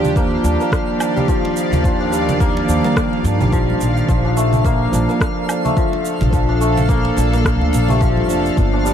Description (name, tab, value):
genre	organic downtempo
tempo	107 BPM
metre	4/4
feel	swing 57% on 16ths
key	unclear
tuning	A4 = 440 Hz
part	tine electric piano	accompaniment	0.0-8.9 s	F3 to G4	-23 LUFS	right 2 dB	sidechain pumping, tape echo
part	bowed-like drone	sustained chords	0.0-8.9 s	Eb3 to F5	-24 LUFS	equal	built-in reverb, sidechain pumping
part	santur	arpeggios	0.0-8.9 s	F3 to D4	-20 LUFS	left 2 dB	tape echo
part	upright bass	bass	0.0-8.9 s	F1 to G2	-19 LUFS	equal	none
part	electronic shaker, rim click and woodblock	drums	0.0-8.9 s	none	-27 LUFS	right 2 dB	none
part	congas	percussion	0.0-8.3 s	none	-26 LUFS	right 4 dB	none
part	twinkling granular texture	texture	0.2-8.9 s	F5	-31 LUFS	right 1 dB	built-in reverb
part	electronic kick drum	drums	0.2-8.7 s	none	-19 LUFS	equal	none
room	light reverb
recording	none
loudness	-14 LUFS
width	side -9 dB against mid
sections	0.0-8.9 A section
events	none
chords	0.0 Ebmaj9; 4.1 Bbmaj7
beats	0.16 0.72 1.28 | 1.85 2.41 2.97 3.53 | 4.09 4.65 5.21 5.77 | 6.33 6.89 7.45 8.01 | 8.57